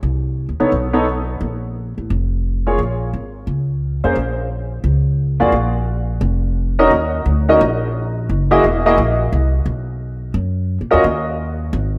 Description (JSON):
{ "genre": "jazz, big band swing", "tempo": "174 BPM", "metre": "4/4", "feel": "swing 65% on 8ths", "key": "Bb minor", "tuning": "A4 = 440 Hz", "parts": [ { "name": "upright bass", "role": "bass", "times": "0.0-12.0 s", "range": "Fb1 to A#2", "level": "-21 LUFS", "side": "equal", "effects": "none" }, { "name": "clear baby grand piano", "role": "accompaniment", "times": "0.6-11.0 s", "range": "Bb3 to Eb5", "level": "-19 LUFS", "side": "equal", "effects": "analog chorus" } ], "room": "moderate lush hall reverb, RT60 2.1 s", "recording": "dreamy mix soaked in reverb", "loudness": "-18 LUFS", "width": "mono", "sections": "0.0-4.2 A section; 4.2-12.0 B section", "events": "none", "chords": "0.0 Cmmaj7; 0.7 B9; 1.4 Bbm7; 4.2 Bbm; 5.5 Bb5; 6.9 Eb5; 8.3 Gb13; 9.7 Bmaj7(no3); 11.0 N.C." }